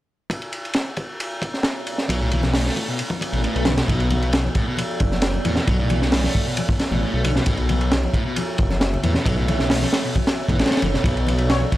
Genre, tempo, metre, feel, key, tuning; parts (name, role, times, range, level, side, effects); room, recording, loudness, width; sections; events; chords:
breakbeat, breaks; 134 BPM; 4/4; straight; B minor; A4 = 441 Hz
dark analog pad; sustained chords; 1.5-11.8 s; B3 to E5; -30 LUFS; right 2 dB; chorus, phaser, sidechain pumping
crunchy breakbeat drum kit; drums; 0.3-11.8 s; hi-hat, kick drum, ride cymbal, snare drum; -22 LUFS; equal; high-pass filter on kick, high-pass filter on cymbals, high-pass filter on hats, high-pass filter on snare, high-pass filter on room
overdriven electric guitar; riff; 2.1-11.8 s; A2 to A3; -26 LUFS; equal; tube saturation, tape echo
detuned saw bass; bass; 2.1-11.7 s; F#1 to E2; -22 LUFS; equal
congas; percussion; 2.3-11.7 s; -30 LUFS; left 3 dB
swell; sound effects; 3.2-3.9 s; -33 LUFS; left 3 dB
mellow brass ensemble; stabs; 11.5-11.6 s; D4 to C#5; -27 LUFS; left 4 dB
studio ambience; dry, gritty hardware recording; -18 LUFS; side -15 dB against mid
0.3-3.9 A section; 3.9-11.8 B section
swell 3.2-3.9
0.3 Bm9